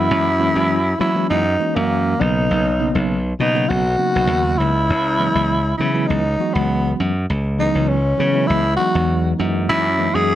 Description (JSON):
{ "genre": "jazz", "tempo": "100 BPM", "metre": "4/4", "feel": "straight", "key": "C# dorian", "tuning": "A4 = 440 Hz", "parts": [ { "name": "growling tenor saxophone", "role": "melody", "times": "0.0-10.3 s", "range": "A#3 to G#4", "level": "-19 LUFS", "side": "equal", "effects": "none" }, { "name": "bell-like tine electric piano", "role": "accompaniment", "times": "0.0-10.3 s", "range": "C#3 to D#5", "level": "-23 LUFS", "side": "equal", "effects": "medium stereo tremolo" }, { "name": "glassy slap bass", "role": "bass", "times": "0.0-10.3 s", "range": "B1 to F#3", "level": "-20 LUFS", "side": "equal", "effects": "none" } ], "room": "light reverb", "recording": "none", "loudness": "-16 LUFS", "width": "side -12 dB against mid", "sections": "0.0-10.3 A section", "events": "none", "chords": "0.0 F#13; 2.2 Bmaj9; 4.9 C#m11; 9.4 F#13" }